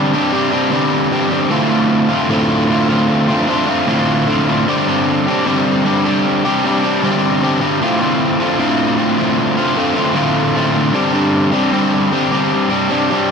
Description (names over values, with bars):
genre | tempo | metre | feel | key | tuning
rock | 76 BPM | 4/4 | straight | D minor | A4 = 440 Hz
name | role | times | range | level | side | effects
crunchy overdriven guitar | solo | 0.0-13.3 s | D2 to G4 | -13 LUFS | equal | spring reverb, tape echo
room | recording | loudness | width
moderate studio reverb, RT60 0.9 s | none | -13 LUFS | side -6 dB against mid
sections
0.0-13.3 A section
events
none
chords
0.0 Gsus4; 1.5 Dm7; 4.7 Gsus4; 7.8 Dm7; 11.0 Gsus4